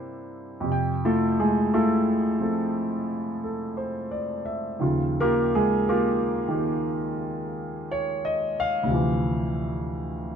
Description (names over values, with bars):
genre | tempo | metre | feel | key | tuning
solo jazz | 58 BPM | 4/4 | swing 67% on 8ths, rubato | unclear | A4 = 445 Hz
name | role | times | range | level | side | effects
warm grand piano | solo | 0.0-10.4 s | D2 to G5 | -23 LUFS | equal | none
room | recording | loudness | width
light reverb | dark, warm production | -23 LUFS | side -7 dB against mid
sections
0.7-10.4 A section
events
grand piano solo 0.7-10.4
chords
0.0 C9; 0.7 Fmaj9; 4.8 Eb9; 8.9 Dm9